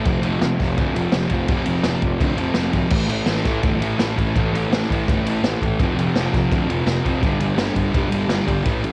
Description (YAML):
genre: garage rock duo or trio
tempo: 168 BPM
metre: 4/4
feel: straight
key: unclear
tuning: A4 = 440 Hz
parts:
  - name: thick fuzz guitar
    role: riff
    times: 0.0-8.9 s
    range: F2 to A3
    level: -24 LUFS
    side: equal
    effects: distortion
  - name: fuzz picked electric bass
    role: bass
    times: 0.1-8.9 s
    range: F1 to D2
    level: -28 LUFS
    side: equal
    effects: overdrive, tube saturation
  - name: vintage drum kit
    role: drums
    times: 0.1-8.9 s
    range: crash cymbal, kick drum, ride cymbal, snare drum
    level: -24 LUFS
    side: equal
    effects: cassette tape
room: light reverb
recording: home recording on cassette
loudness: -20 LUFS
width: mono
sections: 0.0-8.7 A section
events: none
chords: 0.1 F5; 2.9 A5; 5.8 F5; 7.2 G5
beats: | 0.06 0.42 0.78 1.13 | 1.49 1.85 2.21 2.56 | 2.92 3.28 3.63 3.99 | 4.35 4.71 5.06 5.42 | 5.78 6.14 6.50 6.86 | 7.21 7.57 7.93 8.29 | 8.65